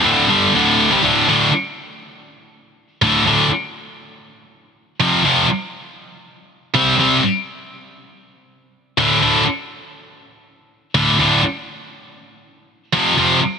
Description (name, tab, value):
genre	rock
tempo	121 BPM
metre	4/4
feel	straight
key	D minor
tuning	A4 = 440 Hz
part	heavy high-gain guitar	solo	0.0-13.4 s	D2 to C4	-14 LUFS	equal	distortion
room	light reverb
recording	dense, heavily limited modern master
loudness	-13 LUFS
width	side -6 dB against mid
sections	0.0-1.0 A section; 1.0-13.6 B section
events	none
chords	0.0 D5; 5.0 F5; 6.7 C5; 9.0 D5; 12.9 F5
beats	0.05 0.54 | 1.04 1.53 2.03 2.53 | 3.02 3.52 4.02 4.51 | 5.01 5.50 6.00 6.50 | 6.99 7.49 7.99 8.48 | 8.98 9.47 9.97 10.46 | 10.96 11.45 11.95 12.44 | 12.94